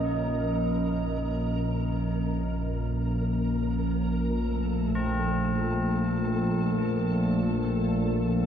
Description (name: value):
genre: dark ambient drone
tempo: free time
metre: none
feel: none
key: unclear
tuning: A4 = 441 Hz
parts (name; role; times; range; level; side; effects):
- dark analog pad; sustained chords; 0.0-8.5 s; F3 to Eb5; -28 LUFS; right 1 dB; chorus
- tubular bells; arpeggios; 0.0-8.5 s; C4 to Eb4; -38 LUFS; left 2 dB; diffuse ambient delay
- analog drone; drone; 0.0-8.5 s; Bb1 to Bb2; -28 LUFS; left 1 dB; chorus
- flickering grainy texture; texture; 0.0-8.5 s; A4 to Bb4; -38 LUFS; equal; built-in reverb
room: wet cathedral reverb, RT60 5.7 s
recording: none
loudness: -25 LUFS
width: side -9 dB against mid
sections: 0.0-8.5 A section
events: none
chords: 0.0 Bbm; 4.3 Dm